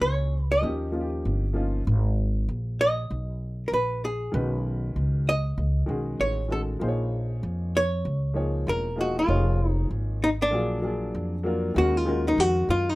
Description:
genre	hip hop, jazz-hop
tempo	97 BPM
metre	4/4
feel	swing 61% on 16ths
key	Eb minor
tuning	A4 = 440 Hz
part	archtop guitar, miked and amplified	melody	0.0-13.0 s	D4 to Eb5	-25 LUFS	equal	none
part	warm grand piano	accompaniment	0.0-13.0 s	Bb2 to Eb5	-30 LUFS	left 1 dB	none
part	upright bass	bass	0.0-13.0 s	Fb1 to Gb2	-26 LUFS	equal	none
room	light reverb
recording	rough home demo mix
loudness	-23 LUFS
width	side -20 dB against mid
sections	0.0-11.8 A section; 11.8-13.0 B section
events	hollow-body jazz guitar solo 11.8-13.0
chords	0.0 Bbm7b5; 0.6 Eb7; 1.9 Abmadd9; 4.3 B9; 6.8 Bbm7; 9.3 Db69/F; 10.5 Bb7b13; 11.8 Ebm11

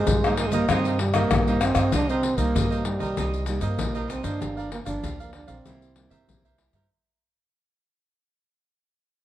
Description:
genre	samba and choro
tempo	97 BPM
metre	4/4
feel	straight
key	C minor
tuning	A4 = 440 Hz
part	breathy trombone	melody	0.0-6.6 s	G3 to D4	-27 LUFS	right 2 dB	none
part	cavaquinho	accompaniment	0.0-6.9 s	Eb4 to F5	-33 LUFS	right 5 dB	none
part	nylon-string guitar	accompaniment	0.0-6.9 s	G2 to E4	-33 LUFS	equal	none
part	upright bass	bass	0.0-6.9 s	G1 to G2	-28 LUFS	equal	none
part	egg shaker, surdo, pandeiro and tamborim	percussion	0.1-6.9 s	none	-26 LUFS	left 3 dB	none
room	moderate large studio reverb, RT60 1.2 s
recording	worn, warbling old tape, cassette tape, warbly pitch drift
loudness	-22 LUFS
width	side -13 dB against mid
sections	0.0-1.9 A section; 1.9-6.9 B section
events	fade-out 1.9-6.9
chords	0.0 Cm7; 4.4 Gm7; 5.7 C7

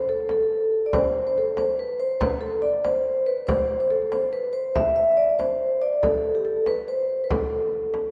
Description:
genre	medieval dance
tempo	94 BPM (dotted quarters)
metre	6/8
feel	straight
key	A minor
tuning	A4 = 440 Hz
part	vibraphone with soft mallets	melody	0.0-8.1 s	G4 to E5	-24 LUFS	equal	slapback echo
part	frame drum	percussion	0.1-8.1 s	none	-33 LUFS	equal	none
room	wet concert hall reverb, RT60 2.0 s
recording	lossy compression artefacts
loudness	-23 LUFS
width	mono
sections	0.0-8.1 A section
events	none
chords	none

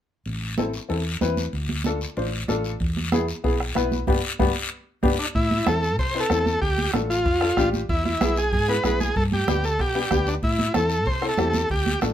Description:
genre	latin, cumbia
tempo	189 BPM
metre	4/4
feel	straight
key	A minor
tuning	A4 = 440 Hz
part	hollow-body short-scale fingered electric bass	bass	0.3-12.1 s	G1 to C3	-27 LUFS	equal	none
part	congas	percussion	0.3-12.1 s	none	-28 LUFS	right 3 dB	none
part	guiro	percussion	0.3-12.1 s	none	-34 LUFS	left 4 dB	none
part	warm upright piano	accompaniment	0.6-12.1 s	B3 to C5	-26 LUFS	left 3 dB	none
part	bombo	percussion	2.8-12.1 s	none	-27 LUFS	equal	none
part	combo organ	melody	5.2-12.0 s	D4 to C5	-24 LUFS	equal	none
room	moderate small room reverb, RT60 0.6 s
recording	minimal, uncompressed stereo recording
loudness	-21 LUFS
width	side -10 dB against mid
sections	0.3-5.3 A section; 5.3-12.1 B section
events	band accent 4.1-5.3; drum fill 4.4-5.3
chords	0.3 Am; 1.5 Dm; 2.8 E; 4.1 G; 5.3 Am; 6.6 Dm; 7.9 E; 9.2 G; 10.4 Am

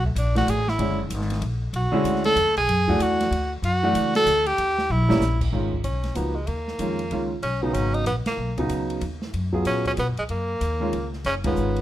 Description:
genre	modal jazz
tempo	189 BPM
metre	3/4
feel	swing 63% on 8ths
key	G# dorian from 5.5 s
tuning	A4 = 438 Hz
part	clear tenor saxophone	melody	0.0-11.8 s	G#3 to A4	-24 LUFS	right 1 dB	none
part	upright bass	bass	0.0-11.8 s	F#1 to B2	-26 LUFS	left 1 dB	none
part	open jazz drum kit	drums	0.0-11.8 s	crash cymbal, hi-hat, kick drum, ride cymbal, snare drum	-34 LUFS	right 1 dB	none
part	warm concert grand piano	accompaniment	0.3-11.8 s	C#3 to G#4	-25 LUFS	right 1 dB	none
room	light reverb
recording	minimal, uncompressed stereo recording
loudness	-21 LUFS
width	side -13 dB against mid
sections	0.0-5.5 A section; 5.5-11.8 B section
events	tenor saxophone solo 0.0-5.5; drum fill 4.9-5.2; band accent 8.2, 11.4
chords	0.0 D; 1.7 Bm9; 3.6 D; 4.6 D#(b9); 5.5 G#m69; 9.3 Bsus2

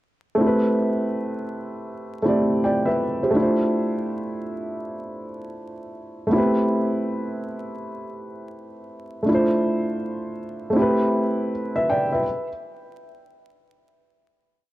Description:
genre	hip hop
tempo	81 BPM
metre	4/4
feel	swing 64% on 16ths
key	A minor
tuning	A4 = 440 Hz
part	dark upright piano	solo	0.4-12.5 s	A3 to G5	-21 LUFS	equal	cassette tape
room	light reverb, small room ambience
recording	dark, warm production, vinyl crackle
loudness	-20 LUFS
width	side -16 dB against mid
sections	0.4-12.2 A section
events	none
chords	0.4 Am9; 3.3 Dm9; 6.3 Am9; 9.3 Dm9; 10.8 Am9

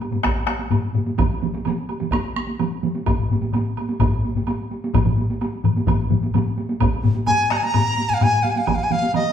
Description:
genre	japanese traditional, taiko drum ensemble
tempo	128 BPM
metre	4/4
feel	straight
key	unclear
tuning	A4 = 440 Hz
part	taiko ensemble	percussion	0.0-9.3 s	none	-26 LUFS	right 3 dB	none
part	woodblock	percussion	0.0-9.2 s	none	-32 LUFS	right 2 dB	none
part	taiko ensemble	percussion	0.1-8.3 s	none	-21 LUFS	left 3 dB	none
part	taiko ensemble	percussion	0.2-8.8 s	none	-25 LUFS	equal	none
part	solo taiko drums	percussion	1.2-9.2 s	none	-26 LUFS	right 6 dB	none
part	reedy dizi	melody	7.3-9.3 s	Eb5 to Bb5	-19 LUFS	equal	none
room	wet large studio reverb, RT60 1.2 s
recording	band playing live in one room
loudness	-18 LUFS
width	side -9 dB against mid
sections	0.0-6.8 A section; 6.8-9.3 B section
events	none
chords	none

